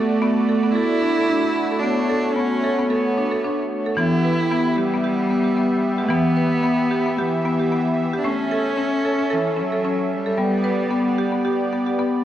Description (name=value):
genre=world meditative, meditative tuned percussion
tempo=112 BPM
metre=4/4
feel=swing 55% on 16ths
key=unclear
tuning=A4 = 440 Hz
part: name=rich cello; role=melody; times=0.0-12.0 s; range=E3 to E4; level=-23 LUFS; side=right 2 dB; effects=ping-pong delay
part: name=brassy analog pad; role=sustained chords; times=0.0-12.2 s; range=A3 to E5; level=-25 LUFS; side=right 1 dB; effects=chorus
part: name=marimba with medium hard mallets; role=arpeggios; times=0.0-12.2 s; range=E3 to B4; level=-21 LUFS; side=left 1 dB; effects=ping-pong delay
room=wet echo chamber reverb, RT60 1.9 s, small room reverb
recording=worn, warbling old tape, cassette tape, warbly pitch drift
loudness=-18 LUFS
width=side -11 dB against mid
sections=0.0-12.2 A section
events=none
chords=0.0 D; 4.0 Em; 8.2 A; 10.4 G